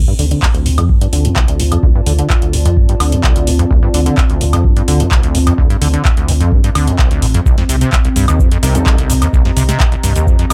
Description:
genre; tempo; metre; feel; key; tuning
acid house; 128 BPM; 4/4; straight; D phrygian; A4 = 440 Hz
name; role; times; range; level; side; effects
liquid acid bass; riff; 0.0-10.5 s; Bb1 to D3; -18 LUFS; equal; chorus, overdrive
warbly tape-like pad; texture; 0.3-10.5 s; C4 to Bb5; -24 LUFS; equal; chorus, built-in reverb, phaser, sidechain pumping
round analog bass; bass; 0.2-10.5 s; A1 to D2; -16 LUFS; equal; tube saturation, sidechain pumping
booming analog drum machine; drums; 0.2-10.5 s; handclaps, hi-hat, shaker, snare drum, woodblock; -22 LUFS; equal; none
electronic kick drum; drums; 0.4-10.4 s; none; -15 LUFS; equal; none
clear baby grand piano; stabs; 8.6-10.5 s; G3 to Bb4; -25 LUFS; equal; dub echo
room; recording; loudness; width
light reverb; none; -12 LUFS; mono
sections
0.0-10.5 A section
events
filter sweep on acid bass 0.0-10.5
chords
0.0 Dm7; 7.5 Cm7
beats
0.42 0.89 1.36 | 1.83 2.30 2.77 3.24 | 3.71 4.17 4.64 5.11 | 5.58 6.05 6.52 6.99 | 7.46 7.92 8.39 8.86 | 9.33 9.80 10.27

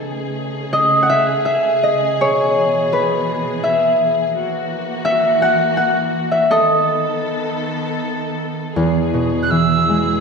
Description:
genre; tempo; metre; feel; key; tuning
celtic folk, Celtic slow air; 82 BPM; 3/4; uneven beats, rubato; E major; A4 = 440 Hz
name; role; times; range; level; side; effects
concert harp; accompaniment; 0.0-10.2 s; E2 to F#5; -16 LUFS; equal; none
dark studio string section; sustained chords; 0.0-10.2 s; B2 to A4; -23 LUFS; equal; none
wooden whistle; melody; 9.4-10.2 s; E6 to F#6; -17 LUFS; right 5 dB; none
room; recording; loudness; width
wet concert hall reverb, RT60 1.8 s; recorded in a church or concert hall; -15 LUFS; side -5 dB against mid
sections
0.0-8.8 A section; 8.8-10.2 B section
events
harp solo 0.0-8.8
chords
0.0 Amaj7; 2.2 E/B; 4.4 F#7; 6.5 B7; 8.8 E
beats
0.72 1.47 | 2.21 2.93 3.65 | 4.35 5.06 5.77 | 6.50 7.24 8.00 | 8.76 9.50

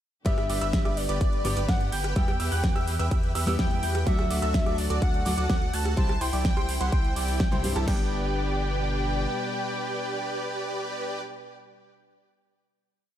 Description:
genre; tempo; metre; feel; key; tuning
EDM, festival progressive house; 126 BPM; 4/4; straight; G major; A4 = 439 Hz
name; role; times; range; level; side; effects
picked steel-string acoustic guitar; accompaniment; 0.2-11.2 s; G2 to G4; -33 LUFS; left 2 dB; sidechain pumping
airy dreamy lead; melody; 0.3-11.2 s; D5 to A5; -33 LUFS; equal; chorus, digital delay
rich studio string section; sustained chords; 0.3-11.2 s; B2 to G4; -40 LUFS; equal; sidechain pumping
warm grand piano; arpeggios; 0.3-11.2 s; A5 to G6; -37 LUFS; right 3 dB; sidechain pumping, digital delay
dense compressed supersaw; riff; 0.3-11.2 s; E4 to G5; -33 LUFS; right 1 dB; sidechain pumping, digital delay
saturated sub bass; bass; 0.3-9.3 s; G1 to G2; -30 LUFS; equal; sidechain pumping
big-room dance drum kit; drums; 0.3-8.0 s; crash cymbal, kick drum, snare drum; -26 LUFS; equal; none
pop drum kit; drums; 0.3-7.9 s; hi-hat, rim click, snare drum; -33 LUFS; right 1 dB; overdrive
room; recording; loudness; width
light reverb, digital ambience; none; -24 LUFS; side -11 dB against mid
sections
0.3-7.9 drop; 7.9-11.7 final chord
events
drop 0.3-7.9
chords
0.3 G; 2.2 Em; 4.1 D; 6.0 C; 7.9 G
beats
| 0.26 0.73 1.21 1.69 | 2.16 2.64 3.11 3.59 | 4.07 4.54 5.02 5.50 | 5.97 6.45 6.92 7.40 | 7.88 8.35 8.83 9.30 | 9.78 10.26 10.73 11.21

